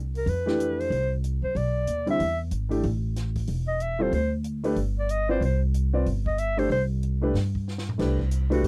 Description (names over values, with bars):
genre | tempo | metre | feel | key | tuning
jazz, small-group swing and bop | 187 BPM | 4/4 | swing 62% on 8ths | C major | A4 = 441 Hz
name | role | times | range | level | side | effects
upright bass | bass | 0.0-8.7 s | E1 to G2 | -29 LUFS | equal | none
compact cocktail drum kit | drums | 0.1-8.7 s | crash cymbal, hi-hat, kick drum, snare drum, toms | -41 LUFS | equal | none
warm clarinet | melody | 0.2-8.7 s | F#4 to E5 | -30 LUFS | equal | none
warm upright piano | accompaniment | 0.5-8.7 s | D3 to D5 | -29 LUFS | equal | none
room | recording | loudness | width
little or no reverb | dry, close 1970s-style studio recording | -26 LUFS | mono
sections
0.0-8.0 A section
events
drum fill 7.7-8.0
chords
0.3 Fmaj7; 1.6 Bmadd11; 2.2 E7#9; 2.8 A5; 4.1 Dsus4; 4.8 G7; 5.4 Csus2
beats
| 0.28 0.60 0.92 1.24 | 1.56 1.88 2.20 2.52 | 2.84 3.17 3.49 3.81 | 4.13 4.45 4.77 5.09 | 5.42 5.74 6.06 6.38 | 6.70 7.02 7.34 7.67 | 7.99 8.31 8.63